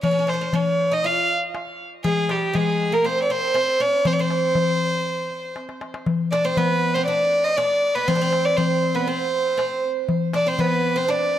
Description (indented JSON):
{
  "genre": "Arabic maqam ensemble",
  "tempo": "119 BPM",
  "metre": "4/4",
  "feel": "straight",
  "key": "C maqam bayati",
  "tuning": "A4 = 437 Hz",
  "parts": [
    { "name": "rich violin", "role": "melody", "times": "0.0-11.4 s", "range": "G4 to F5", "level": "-21 LUFS", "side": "equal", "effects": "tape echo" },
    { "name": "oud", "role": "second line", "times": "0.0-11.4 s", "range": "G3 to F4", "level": "-26 LUFS", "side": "right 4 dB", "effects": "none" },
    { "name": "darbuka", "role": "percussion", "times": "0.0-11.3 s", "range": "none", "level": "-24 LUFS", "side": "left 4 dB", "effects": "none" }
  ],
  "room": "wet spring reverb, RT60 1.8 s, small room ambience",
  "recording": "none",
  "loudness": "-19 LUFS",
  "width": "side -11 dB against mid",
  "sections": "0.0-6.1 A section; 6.1-11.4 B section",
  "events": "drum fill 5.6-6.1",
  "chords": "none"
}